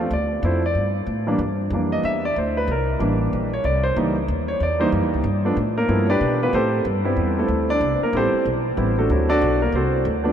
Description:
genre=jazz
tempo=187 BPM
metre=4/4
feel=swing 61% on 8ths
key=unclear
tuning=A4 = 441 Hz
part: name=warm grand piano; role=melody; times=0.0-10.3 s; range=E3 to E5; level=-20 LUFS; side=right 1 dB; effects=none
part: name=upright bass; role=bass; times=0.0-10.3 s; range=A1 to B2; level=-24 LUFS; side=left 1 dB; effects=none
room=wet huge ambient reverb, RT60 9.1 s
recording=in a vast, echoing space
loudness=-18 LUFS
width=side -9 dB against mid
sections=0.0-10.3 A section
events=grand piano solo 0.0-10.3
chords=0.1 Dm7; 0.8 G5; 1.4 C7; 4.0 C#dim7; 5.2 G7; 6.5 Am7; 9.1 D7

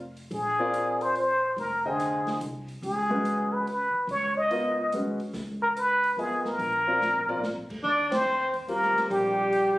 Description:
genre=modal jazz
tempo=143 BPM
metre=3/4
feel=swing 65% on 8ths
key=unclear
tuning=A4 = 441 Hz
part: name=upright bass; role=bass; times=0.0-9.8 s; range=F1 to F2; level=-40 LUFS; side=equal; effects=none
part: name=open jazz drum kit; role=drums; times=0.2-9.6 s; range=crash cymbal, hi-hat, kick drum, ride cymbal, snare drum, toms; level=-41 LUFS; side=equal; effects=none
part: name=trumpet with plunger mute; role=melody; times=0.3-9.8 s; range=G4 to Eb5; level=-25 LUFS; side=equal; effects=plate reverb
part: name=warm concert grand piano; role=accompaniment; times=0.6-9.3 s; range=D3 to G5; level=-30 LUFS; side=equal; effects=none
part: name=mellow tenor saxophone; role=second line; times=7.8-9.8 s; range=G3 to D4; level=-28 LUFS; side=equal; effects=none
room=moderate club reverb, RT60 0.8 s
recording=recorded on a phone in the room, studio reverb, compression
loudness=-24 LUFS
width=side -17 dB against mid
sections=0.0-7.8 A section; 7.8-9.8 B section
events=drum fill 7.0-7.4; band accent 8.1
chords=0.0 Bb9sus4; 2.8 Db9sus4; 6.6 Bbadd9; 7.8 Ebmaj9

